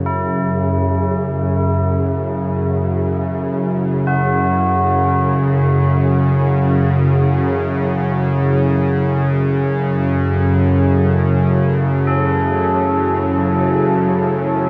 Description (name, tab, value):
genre	dark ambient drone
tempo	free time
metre	none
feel	none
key	F# minor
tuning	A4 = 436 Hz
part	deep dark ambient pad	sustained chords	0.0-14.7 s	F#3 to C#5	-27 LUFS	equal	chorus, built-in reverb
part	bowed-like drone	drone	0.0-14.7 s	F#2 to C#3	-17 LUFS	equal	built-in reverb
part	tubular bells	arpeggios	0.1-14.7 s	E4 to A4	-26 LUFS	equal	diffuse ambient delay
room	wet huge ambient reverb, RT60 8.3 s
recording	in a vast, echoing space, cassette tape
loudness	-17 LUFS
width	mono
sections	0.0-14.7 A section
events	fade-in on ambient pad 0.0-14.7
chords	0.0 F#m